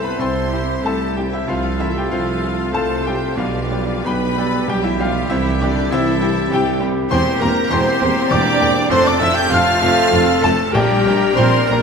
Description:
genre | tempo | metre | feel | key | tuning
classical, romantic movement for piano and orchestra | 84-102 BPM | 3/4 | rubato | C major, F major from 7.1 s | A4 = 442 Hz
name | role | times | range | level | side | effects
clear baby grand piano | melody | 0.0-11.8 s | E1 to G6 | -20 LUFS | left 1 dB | none
clear chamber violin section | melody | 0.0-11.8 s | D5 to G6 | -29 LUFS | left 3 dB | none
clear oboe | second line | 0.0-11.8 s | G4 to D5 | -28 LUFS | right 1 dB | none
rich chamber violin section | second line | 0.0-11.8 s | D5 to G6 | -29 LUFS | left 1 dB | none
warm clarinet | second line | 0.0-11.8 s | D4 to G5 | -25 LUFS | left 3 dB | none
rich chamber viola section | accompaniment | 0.0-11.8 s | D4 to G5 | -24 LUFS | right 2 dB | none
mellow French horn section | sustained chords | 0.0-11.8 s | G3 to D4 | -26 LUFS | left 3 dB | none
mellow trumpet | stabs | 0.0-11.8 s | E4 to Bb4 | -26 LUFS | right 2 dB | none
mellow tuba | bass | 0.0-11.8 s | E1 to C2 | -25 LUFS | right 4 dB | none
rich chamber double bass section | bass | 0.0-11.8 s | Bb1 to F2 | -25 LUFS | right 3 dB | none
warm studio cello section | bass | 0.0-11.8 s | D3 to G4 | -25 LUFS | right 1 dB | none
room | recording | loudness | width
wet scoring stage reverb, RT60 1.7 s | none | -15 LUFS | side -6 dB against mid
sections
0.0-11.8 A section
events
none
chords
0.0 C; 1.5 F/C; 3.4 G7/B; 5.3 C; 7.1 C7/E; 8.9 F; 10.7 Gm/Bb

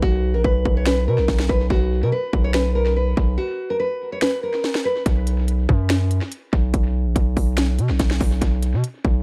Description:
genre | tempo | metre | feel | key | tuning
hip hop, trap | 143 BPM | 4/4 | half-time | unclear | A4 = 445 Hz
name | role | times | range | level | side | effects
nylon-string guitar | melody | 0.0-5.0 s | F#4 to C#5 | -25 LUFS | equal | low-pass filter, tape echo
distorted 808-style bass | bass | 0.0-9.2 s | A#1 to B2 | -22 LUFS | equal | distortion
trap drum kit | drums | 0.0-9.1 s | finger snaps, hi-hat, kick drum, snare drum | -24 LUFS | equal | tape echo
room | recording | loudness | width
digital ambience | echo-heavy mix | -20 LUFS | mono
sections
0.0-9.2 A section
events
break 0.0-5.1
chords
0.0 B5; 1.7 F#add11/B (rootless); 5.1 B5; 8.4 N.C.

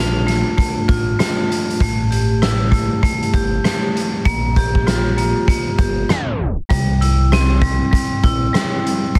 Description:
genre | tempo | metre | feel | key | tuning
hip hop, boom-bap hip-hop | 98 BPM | 4/4 | swing 62% on 16ths | unclear | A4 = 443 Hz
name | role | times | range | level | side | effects
vibraphone with hard mallets | accompaniment | 0.0-9.2 s | G3 to G4 | -23 LUFS | equal | cassette tape, high-pass filter, low-pass filter
upright bass | bass | 0.0-9.2 s | G1 to C2 | -21 LUFS | equal | none
raw garage drum kit | drums | 0.3-9.2 s | hi-hat, kick drum, rim click, snare drum | -20 LUFS | equal | none
room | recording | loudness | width
light reverb, small room ambience | dense, heavily limited modern master, vinyl crackle, tape stop | -17 LUFS | mono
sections
0.0-6.7 A section; 6.7-9.2 B section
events
tape stop 6.1-6.7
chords
0.0 Bbmaj7; 1.8 A5; 4.3 Gm7/Bb; 6.7 C

